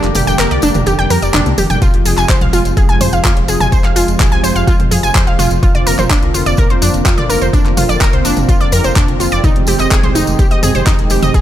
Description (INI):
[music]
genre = melodic techno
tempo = 126 BPM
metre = 4/4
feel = straight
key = F dorian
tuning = A4 = 440 Hz
[part]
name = warm analog pad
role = sustained chords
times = 0.0-11.4 s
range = C3 to Ab4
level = -19 LUFS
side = right 1 dB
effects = chorus, sidechain pumping
[part]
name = wide unison pluck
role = arpeggios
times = 0.0-11.4 s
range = D4 to Ab5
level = -16 LUFS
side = equal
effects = sidechain pumping, ping-pong delay
[part]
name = swelling detuned saw bass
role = bass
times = 0.0-11.4 s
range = Eb1 to F2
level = -17 LUFS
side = equal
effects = tube saturation, sidechain pumping
[part]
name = deep house drum kit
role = drums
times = 0.0-11.4 s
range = handclaps, hi-hat, toms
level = -19 LUFS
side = equal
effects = small room ambience
[part]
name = tambourine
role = percussion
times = 0.1-11.4 s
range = none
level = -25 LUFS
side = left 4 dB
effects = none
[part]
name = electronic kick drum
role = drums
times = 1.8-11.4 s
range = none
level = -13 LUFS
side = equal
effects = small room ambience
[sound]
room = digital ambience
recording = none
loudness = -10 LUFS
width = side -12 dB against mid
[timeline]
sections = 0.0-11.4 A section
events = break 0.0-1.8; drum fill 1.5-1.8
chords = 0.0 Gm/F; 1.8 Fm; 5.6 Bbadd9/F; 9.4 Abmaj7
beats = 0.39 0.87 1.34 | 1.82 2.29 2.77 3.25 | 3.72 4.20 4.68 5.15 | 5.63 6.11 6.58 7.06 | 7.53 8.01 8.49 8.96 | 9.44 9.91 10.39 10.87 | 11.34